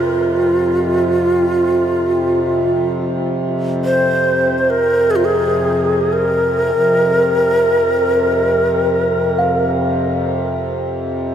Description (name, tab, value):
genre	world meditative, free-time meditation music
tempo	free time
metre	none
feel	none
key	F minor pentatonic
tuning	A4 = 442 Hz
part	breathy low Native American-style wooden flute	melody	0.0-9.7 s	F4 to C5	-15 LUFS	equal	shimmer reverb, ping-pong delay
part	hand-pumped harmonium	drone	0.0-11.3 s	F2 to C3	-19 LUFS	equal	none
part	kalimba	texture	0.0-11.3 s	F5	-23 LUFS	right 1 dB	shimmer reverb
room	wet huge ambient reverb, RT60 4.8 s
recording	none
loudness	-14 LUFS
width	side -9 dB against mid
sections	0.0-11.3 A section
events	none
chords	none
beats	free time